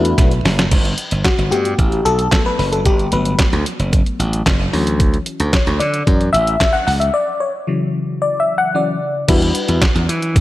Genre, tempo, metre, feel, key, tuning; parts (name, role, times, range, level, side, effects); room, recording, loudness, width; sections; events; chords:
early-eighties boogie funk; 112 BPM; 4/4; straight; A4 = 440 Hz
FM electric piano; accompaniment; 0.0-9.8 s; C#3 to F#5; -18 LUFS; left 2 dB; chorus
glassy slap bass; bass; 0.0-10.4 s; F#1 to E3; -18 LUFS; equal
detuned 8-bit digital drum machine; drums; 0.1-10.4 s; crash cymbal, handclaps, hi-hat, kick drum, snare drum; -16 LUFS; equal
light reverb; -14 LUFS; side -15 dB against mid
0.7-9.3 A section; 9.3-10.4 B section
drum fill 0.2-0.7; FM electric piano solo 0.7-9.3; break 7.1-9.3
0.0 D69; 0.7 Gmaj9; 4.7 Dmaj7; 9.3 Em9